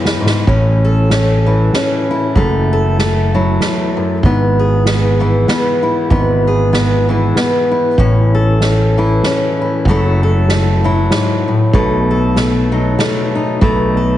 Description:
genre	acoustic folk duo or small band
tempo	96 BPM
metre	3/4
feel	swing 57% on 8ths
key	E major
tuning	A4 = 438 Hz
part	fingerpicked steel-string acoustic guitar	accompaniment	0.0-14.2 s	E2 to A4	-14 LUFS	left 1 dB	none
part	soft-mallet drum kit	drums	0.1-13.8 s	kick drum, ride cymbal, snare drum	-20 LUFS	equal	none
part	sustaining fretless electric bass	bass	0.5-14.2 s	F#1 to B1	-14 LUFS	right 1 dB	none
room	light reverb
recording	heavily compressed radio sound, nothing above 10.5 kHz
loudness	-11 LUFS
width	side -12 dB against mid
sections	0.5-14.2 A section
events	drum fill 0.0-0.5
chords	0.5 A; 2.4 F#m7; 4.2 E/G#; 8.0 A; 9.9 F#m7; 11.7 B7

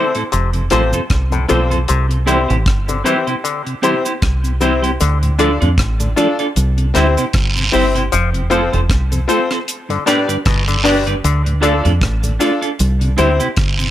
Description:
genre	roots reggae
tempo	77 BPM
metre	4/4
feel	swing 56% on 16ths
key	C major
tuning	A4 = 436 Hz
part	mellow tonewheel organ	accompaniment	0.0-13.9 s	D2 to G4	-24 LUFS	left 1 dB	chorus vibrato, slow rotary speaker
part	semi-hollow electric guitar	accompaniment	0.0-13.5 s	C4 to D5	-20 LUFS	right 3 dB	dub echo
part	clav	arpeggios	0.0-11.8 s	A2 to F3	-22 LUFS	left 7 dB	auto-wah
part	bright baby grand piano	stabs	0.0-13.4 s	C4 to D5	-20 LUFS	left 3 dB	none
part	deep reggae drum kit	drums	0.1-13.9 s	hi-hat, kick drum, rim click	-20 LUFS	equal	none
part	deep dub fingered electric bass	bass	0.3-13.9 s	F1 to F2	-16 LUFS	equal	none
part	cabasa and guiro	percussion	0.3-13.9 s	none	-24 LUFS	right 4 dB	none
room	light reverb, small room ambience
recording	echo-heavy mix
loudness	-13 LUFS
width	side -12 dB against mid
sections	0.0-5.0 A section; 5.0-13.9 B section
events	none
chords	0.3 F; 1.9 C; 5.0 Dm; 6.6 C; 8.1 F; 9.7 G; 11.2 Dm; 12.8 C

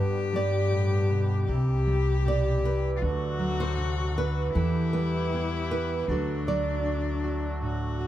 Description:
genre	acoustic folk-pop ballad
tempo	78 BPM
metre	4/4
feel	straight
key	unclear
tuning	A4 = 440 Hz
part	flamenco guitar	melody	0.0-8.0 s	A4 to D5	-32 LUFS	right 4 dB	none
part	warm cello	second line	0.0-8.1 s	D4 to G4	-32 LUFS	left 5 dB	none
part	fingerpicked steel-string acoustic guitar	accompaniment	0.0-8.1 s	G2 to A4	-32 LUFS	right 2 dB	none
part	hand-pumped harmonium	sustained chords	0.0-8.1 s	D3 to G4	-39 LUFS	right 1 dB	none
part	upright bass	bass	0.0-8.1 s	C2 to G2	-27 LUFS	left 1 dB	none
room	little or no reverb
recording	close, detailed microphones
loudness	-24 LUFS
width	side -12 dB against mid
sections	0.0-8.1 A section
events	none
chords	0.0 G; 1.5 C; 3.0 D; 4.5 Em; 6.1 D

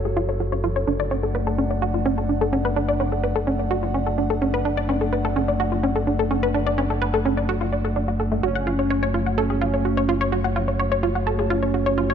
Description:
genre	techno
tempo	127 BPM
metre	4/4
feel	straight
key	unclear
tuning	A4 = 441 Hz
part	dark analog pad	sustained chords	0.0-12.1 s	A3 to F#5	-27 LUFS	left 1 dB	chorus
part	gritty driven synth bass	bass	0.0-12.1 s	F#1	-26 LUFS	equal	none
part	analog pluck	arpeggios	0.1-12.1 s	A3 to F#5	-23 LUFS	equal	chorus, ping-pong delay
part	analog synth brass	melody	8.4-12.1 s	C#4	-27 LUFS	right 4 dB	chorus, tape echo
room	light reverb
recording	none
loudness	-20 LUFS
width	side -8 dB against mid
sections	0.0-12.1 A section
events	filter sweep on synth arpeggio sound 0.0-12.1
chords	0.0 F#m; 0.9 D/F#; 8.4 F#m

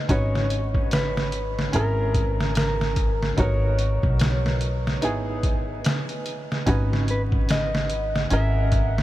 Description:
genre	trip hop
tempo	73 BPM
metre	4/4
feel	swing 59% on 16ths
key	unclear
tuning	A4 = 440 Hz
part	mellow electric guitar	melody	0.0-9.0 s	A#4 to E5	-29 LUFS	equal	vintage 12-bit sampler grit, tape echo
part	clear upright piano	accompaniment	0.0-9.0 s	B3 to B4	-30 LUFS	right 1 dB	tremolo, tape echo
part	upright bass	bass	0.1-9.0 s	G#1 to B1	-25 LUFS	equal	tube saturation
part	trip hop sampler-style drum kit	drums	0.1-9.0 s	hi-hat, kick drum, snare drum	-25 LUFS	equal	none
part	bowed-like drone	texture	7.3-9.0 s	F#5	-40 LUFS	right 2 dB	none
room	light reverb, digital ambience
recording	vinyl crackle, faint mains hum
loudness	-21 LUFS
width	side -15 dB against mid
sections	0.0-9.0 A section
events	none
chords	0.1 B/G#; 1.7 A#m7b5/G#; 3.4 G#m7; 5.0 C#m7/G#; 6.7 B/G#; 8.3 F#7/G#

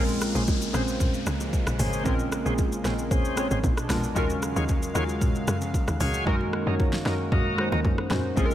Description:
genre	amapiano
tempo	114 BPM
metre	4/4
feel	straight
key	unclear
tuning	A4 = 438 Hz
part	warm analog keys	accompaniment	0.0-8.5 s	Ab3 to Db5	-29 LUFS	equal	chorus
part	warm analog pad	sustained chords	0.0-8.5 s	Cb3 to F5	-34 LUFS	right 1 dB	chorus
part	overdriven tonewheel organ	stabs	0.0-8.5 s	Db4 to F5	-34 LUFS	left 1 dB	slow rotary speaker, digital delay
part	tight log drum bass	bass	0.0-8.5 s	Ab1 to Gb2	-29 LUFS	equal	none
part	downlifter	sound effects	0.0-4.2 s	none	-37 LUFS	left 2 dB	none
part	deep house drum kit	drums	0.1-8.5 s	hi-hat, kick drum, rim click, shaker, snare drum	-28 LUFS	equal	none
part	bongos and congas	percussion	0.1-8.5 s	none	-36 LUFS	right 1 dB	none
room	light reverb, digital ambience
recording	faint mains hum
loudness	-23 LUFS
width	side -12 dB against mid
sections	0.0-8.5 A section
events	hi-hats muted 6.3-8.4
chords	0.0 Bbm9; 3.6 Bb7b9; 4.2 Ebm11; 6.3 Gb6

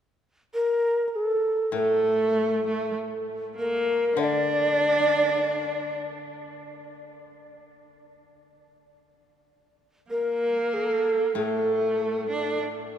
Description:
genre	japanese traditional, Japanese chamber music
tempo	47-53 BPM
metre	2/4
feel	rubato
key	unclear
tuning	A4 = 440 Hz
part	breathy mellow shakuhachi	melody	0.5-6.0, 10.1-12.6 s	A4 to E5	-24 LUFS	equal	none
part	rich cello	second line	1.7-5.9, 10.1-12.6 s	A3 to D4	-30 LUFS	right 2 dB	none
part	koto	accompaniment	1.7-7.5, 11.3-13.0 s	A2 to D3	-33 LUFS	left 4 dB	none
room	moderate cathedral reverb, RT60 6.5 s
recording	minimal, uncompressed stereo recording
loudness	-23 LUFS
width	side -9 dB against mid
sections	0.0-1.7 A section; 1.7-13.0 B section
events	none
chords	none

